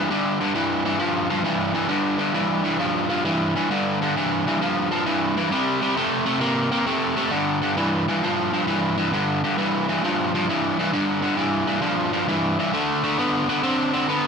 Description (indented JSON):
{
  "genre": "rock",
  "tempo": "133 BPM",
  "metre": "4/4",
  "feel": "swing 67% on 8ths",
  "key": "unclear",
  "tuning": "A4 = 441 Hz",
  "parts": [
    { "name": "crunchy overdriven guitar", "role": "solo", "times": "0.0-14.3 s", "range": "G2 to C4", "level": "-20 LUFS", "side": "equal", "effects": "none" }
  ],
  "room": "moderate large studio reverb, RT60 0.8 s, digital ambience",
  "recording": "none",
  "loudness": "-20 LUFS",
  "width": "side -6 dB against mid",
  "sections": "0.0-14.3 A section",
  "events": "none",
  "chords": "0.0 G5; 5.5 C5; 7.3 G5; 12.8 D5"
}